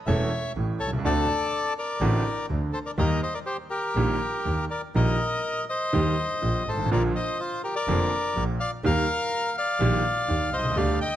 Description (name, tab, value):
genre	tango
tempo	124 BPM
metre	4/4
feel	rubato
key	unclear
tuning	A4 = 441 Hz
part	bandoneon	melody	0.1-11.2 s	F4 to G5	-27 LUFS	left 2 dB	none
part	clear concert grand piano	accompaniment	0.1-11.0 s	E1 to A4	-28 LUFS	right 1 dB	none
part	clear double bass	bass	0.1-11.0 s	E1 to Eb2	-28 LUFS	right 1 dB	none
room	light reverb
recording	close, detailed microphones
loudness	-23 LUFS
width	side -12 dB against mid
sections	0.0-11.2 A section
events	none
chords	0.0 A; 1.0 D7; 3.0 Eb; 6.9 Bb; 8.8 Eb